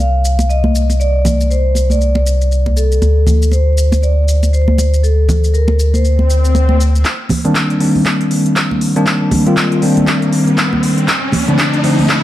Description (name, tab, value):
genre	deep house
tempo	119 BPM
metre	4/4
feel	swing 59% on 16ths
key	C dorian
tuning	A4 = 437 Hz
part	vibraphone with medium mallets	melody	0.0-6.8 s	A4 to F5	-20 LUFS	left 1 dB	tape echo
part	round analog bass	bass	0.0-7.0 s	C2 to D2	-12 LUFS	equal	sidechain pumping
part	deep house drum kit	drums	0.0-12.2 s	handclaps, hi-hat, shaker	-19 LUFS	equal	studio reverb
part	congas	percussion	0.4-12.1 s	none	-20 LUFS	right 1 dB	sidechain pumping on perc
part	swell and riser	sound effects	6.2-12.2 s	none	-22 LUFS	left 1 dB	none
part	electronic kick drum	drums	7.0-12.2 s	none	-29 LUFS	equal	none
part	bell-like tine electric piano	stabs	7.4-12.2 s	D3 to F4	-13 LUFS	left 1 dB	lush chorus, sidechain pumping, low-pass filter, ping-pong delay
room	little or no reverb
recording	dark, warm production, vinyl crackle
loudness	-11 LUFS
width	side -14 dB against mid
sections	0.0-7.0 A section; 7.0-12.2 B section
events	swell 6.2-7.0; build-up 7.0-12.2; drum fill 7.0-12.2; riser 7.0-12.2; filter sweep on tine electric piano 7.0-12.2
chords	0.0 Csus2; 3.0 D5; 7.0 Cm9; 11.1 Dm7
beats	0.49 | 1.00 1.50 2.01 2.51 | 3.02 3.52 4.02 4.53 | 5.03 5.54 6.04 6.54 | 7.05 7.55 8.06 8.56 | 9.06 9.57 10.07 10.58 | 11.08 11.59 12.09